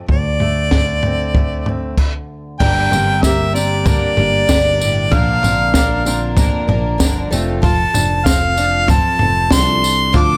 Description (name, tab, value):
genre	indie folk with a building arrangement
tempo	95 BPM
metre	4/4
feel	straight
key	unclear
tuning	A4 = 440 Hz
part	fingerpicked steel-string acoustic guitar	accompaniment	0.0-7.6 s	D2 to G4	-26 LUFS	equal	none
part	warm harmonica	melody	0.1-10.4 s	D5 to D6	-20 LUFS	equal	none
part	picked electric bass	bass	0.1-10.4 s	F1 to D2	-22 LUFS	equal	none
part	compact cocktail drum kit	drums	0.1-10.3 s	crash cymbal, kick drum, snare drum, toms	-19 LUFS	equal	none
part	picked twelve-string acoustic guitar	accompaniment	2.6-10.4 s	G2 to Bb4	-27 LUFS	equal	none
part	clear upright piano	arpeggios	2.6-10.4 s	Bb3 to F4	-27 LUFS	equal	none
part	tambourine	percussion	2.6-10.2 s	none	-29 LUFS	equal	none
room	light reverb, small room ambience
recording	none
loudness	-15 LUFS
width	mono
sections	0.0-2.6 A section; 2.6-10.4 B section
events	stop 2.0-2.6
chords	0.1 D5; 2.6 Gm; 5.1 Bb; 7.3 F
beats	| 0.09 0.72 1.35 1.98 | 2.61 3.24 3.87 4.49 | 5.12 5.75 6.38 7.01 | 7.64 8.26 8.89 9.52 | 10.15